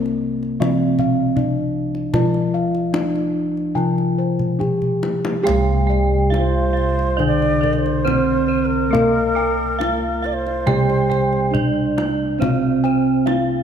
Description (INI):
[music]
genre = Javanese gamelan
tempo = 70 BPM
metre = 4/4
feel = uneven beats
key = C slendro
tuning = A4 = 441 Hz
[part]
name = gamelan-type bronze metallophone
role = melody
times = 0.0-13.6 s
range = Bb3-45c to G4+25c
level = -22 LUFS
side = right 3 dB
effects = none
[part]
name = gamelan-type bronze metallophone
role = accompaniment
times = 0.0-13.6 s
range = C3 to Bb3-45c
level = -24 LUFS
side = left 3 dB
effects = none
[part]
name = gamelan-type bossed gongs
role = arpeggios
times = 0.0-13.6 s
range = Bb4-45c to G5+25c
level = -28 LUFS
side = left 4 dB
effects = none
[part]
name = gamelan-type bossed gongs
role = bass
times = 0.0-13.6 s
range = C2 to Bb4-45c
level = -22 LUFS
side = equal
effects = none
[part]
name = kendang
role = percussion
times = 0.1-13.5 s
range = none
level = -26 LUFS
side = left 2 dB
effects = none
[part]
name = gamelan-type bronze metallophone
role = arpeggios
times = 5.4-13.6 s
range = Bb4-45c to G5+25c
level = -26 LUFS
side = right 4 dB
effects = none
[part]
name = mellow bansuri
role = second line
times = 6.4-12.1 s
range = Bb4-42c to D5+31c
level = -23 LUFS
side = right 1 dB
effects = none
[sound]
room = moderate concert hall reverb, RT60 2.5 s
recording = none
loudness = -16 LUFS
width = side -8 dB against mid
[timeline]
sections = 0.0-5.5 A section; 5.5-13.6 B section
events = drum fill 4.4-5.5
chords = none